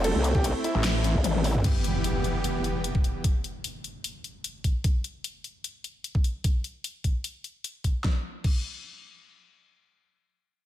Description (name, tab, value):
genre	heavy wobble dubstep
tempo	150 BPM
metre	4/4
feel	half-time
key	E minor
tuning	A4 = 440 Hz
part	clear baby grand piano	melody	0.0-1.6 s	A3 to A4	-32 LUFS	equal	ping-pong delay
part	supersaw chords	sustained chords	0.0-3.2 s	E2 to G4	-31 LUFS	right 1 dB	vintage 12-bit sampler grit, sidechain pumping
part	growl bass	bass	0.0-1.6 s	E1 to C2	-25 LUFS	equal	chorus, overdrive
part	dubstep drum kit	drums	0.0-8.6 s	crash cymbal, handclaps, hi-hat, snare drum, toms	-32 LUFS	left 2 dB	studio reverb
part	electronic kick drum	drums	0.3-8.6 s	none	-24 LUFS	equal	studio reverb
part	snarling distorted saw bass	bass	0.7-1.1 s	A1	-25 LUFS	equal	distortion, overdrive
part	impact	sound effects	1.6-3.2 s	none	-31 LUFS	equal	none
room	light reverb, digital ambience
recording	none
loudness	-25 LUFS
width	side -13 dB against mid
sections	0.0-1.6 A section; 1.6-8.0 B section; 8.0-10.7 C section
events	drop 0.0-1.6; drum fill 1.2-1.6; impact 1.6-3.2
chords	0.0 Am; 1.6 Em; 4.8 N.C.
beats	| 0.04 0.44 0.84 1.24 | 1.64 2.04 2.44 2.84 | 3.24 3.64 4.04 4.44 | 4.84 5.24 5.64 6.04 | 6.44 6.84 7.24 7.64 | 8.04 8.44